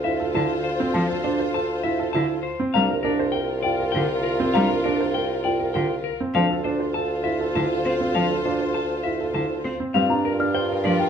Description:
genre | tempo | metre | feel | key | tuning
classical, minimalist pattern music | 100 BPM | 3/4 | straight | D minor | A4 = 440 Hz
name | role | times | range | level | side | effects
semi-hollow electric guitar | melody | 0.0-11.0 s | Bb4 to A5 | -28 LUFS | left 8 dB | none
mellow soprano saxophone | second line | 0.0-11.1 s | F4 | -31 LUFS | right 4 dB | none
rich studio string section | sustained chords | 0.0-11.1 s | F4 to C5 | -31 LUFS | left 5 dB | none
dark grand piano | arpeggios | 0.0-11.1 s | C4 to C5 | -26 LUFS | right 5 dB | none
small celesta | arpeggios | 0.0-11.1 s | F5 to F6 | -30 LUFS | left 4 dB | none
mellow bassoon | bass | 0.0-11.1 s | C2 to G2 | -27 LUFS | equal | none
rich cello | accompaniment | 0.3-11.0 s | D3 to C4 | -26 LUFS | equal | none
room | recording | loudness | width
light reverb | close, detailed microphones | -20 LUFS | side -7 dB against mid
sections
0.0-9.9 A section; 9.9-11.1 A section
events
none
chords
0.0 Dm7; 2.7 C7sus4; 6.3 Dm7; 9.9 Gm7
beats
0.35 | 0.95 1.55 2.15 | 2.75 3.35 3.95 | 4.55 5.15 5.75 | 6.35 6.95 7.55 | 8.15 8.75 9.35 | 9.95 10.55

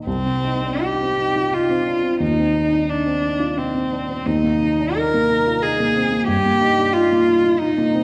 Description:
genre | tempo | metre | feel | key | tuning
classical, romantic duo for cello and grand piano | 77-93 BPM | 3/4 | rubato | C minor | A4 = 437 Hz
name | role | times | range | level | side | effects
dark baby grand piano | accompaniment | 0.0-8.0 s | C2 to F4 | -24 LUFS | equal | none
rich cello | melody | 0.1-8.0 s | C4 to Bb4 | -21 LUFS | equal | none
room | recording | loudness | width
wet scoring stage reverb, RT60 1.4 s | none | -19 LUFS | mono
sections
0.1-8.0 A section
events
none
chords
0.1 Cm; 2.2 Cm/Eb; 4.3 Eb5; 6.3 Eb/G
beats
| 0.06 0.82 1.53 | 2.21 2.90 3.58 | 4.26 4.97 5.63 | 6.28 6.94 7.60

